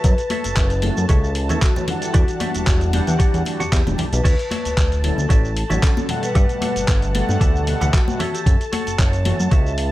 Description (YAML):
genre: nu-disco, nu disco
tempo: 114 BPM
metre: 4/4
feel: swing 54% on 16ths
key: unclear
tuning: A4 = 440 Hz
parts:
  - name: vibraphone with medium hard mallets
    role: melody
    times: 0.0-9.9 s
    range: F#4 to E5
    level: -27 LUFS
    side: left 3 dB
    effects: analog delay
  - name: lush unison pad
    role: sustained chords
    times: 0.0-9.9 s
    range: A5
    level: -32 LUFS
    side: right 3 dB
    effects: chorus, sidechain pumping
  - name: direct-recorded clean electric guitar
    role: riff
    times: 0.0-9.7 s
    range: F#4 to A5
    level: -30 LUFS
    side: right 3 dB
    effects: lush chorus, slapback echo
  - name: fat analog bass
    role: bass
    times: 0.0-9.9 s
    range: D1 to G2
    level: -21 LUFS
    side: equal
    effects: none
  - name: dusty soul sampler-style drum kit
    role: drums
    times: 0.0-9.9 s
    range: crash cymbal, handclaps, hi-hat, shaker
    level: -28 LUFS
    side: equal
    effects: studio ambience
  - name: electronic kick drum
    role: drums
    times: 0.0-9.6 s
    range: none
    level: -16 LUFS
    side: equal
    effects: studio ambience
  - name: congas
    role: percussion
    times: 0.3-9.5 s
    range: none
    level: -28 LUFS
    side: left 3 dB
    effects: none
  - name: mellow synth brass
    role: accompaniment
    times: 0.8-9.4 s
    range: B2 to F#5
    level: -26 LUFS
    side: equal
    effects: chorus, cassette tape, slapback echo
room: little or no reverb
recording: none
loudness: -16 LUFS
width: side -16 dB against mid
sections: 0.0-9.9 A section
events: none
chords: 0.0 F#m7; 2.1 Em9; 4.3 Dmaj9; 6.4 Gmaj9; 8.2 F#m7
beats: | 0.04 0.57 1.09 1.62 | 2.15 2.67 3.20 3.73 | 4.25 4.78 5.31 5.83 | 6.36 6.88 7.41 7.94 | 8.46 8.99 9.52